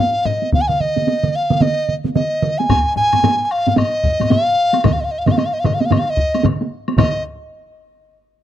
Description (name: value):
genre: japanese traditional, taiko drum ensemble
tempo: 112 BPM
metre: 4/4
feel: swing 60% on 16ths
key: unclear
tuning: A4 = 440 Hz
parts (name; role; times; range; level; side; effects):
- mellow hollow large dizi; melody; 0.0-7.2 s; Eb5 to Ab5; -18 LUFS; equal; none
- taiko ensemble; percussion; 0.3-7.5 s; none; -20 LUFS; left 4 dB; none
- taiko ensemble; percussion; 0.4-7.2 s; none; -19 LUFS; right 2 dB; none
- solo taiko drums; percussion; 0.5-7.5 s; none; -20 LUFS; right 4 dB; none
- taiko ensemble; percussion; 0.5-7.2 s; none; -21 LUFS; equal; none
- woodblock; percussion; 2.7-7.2 s; none; -30 LUFS; left 5 dB; none
room: little or no reverb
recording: dry, close 1970s-style studio recording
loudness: -14 LUFS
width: side -11 dB against mid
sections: 0.0-7.0 A section; 7.0-8.4 B section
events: speeding up 0.0-8.4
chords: none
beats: | 0.53 1.08 1.62 2.16 | 2.70 3.24 3.78 4.32 | 4.85 5.39 5.92 6.45 | 6.98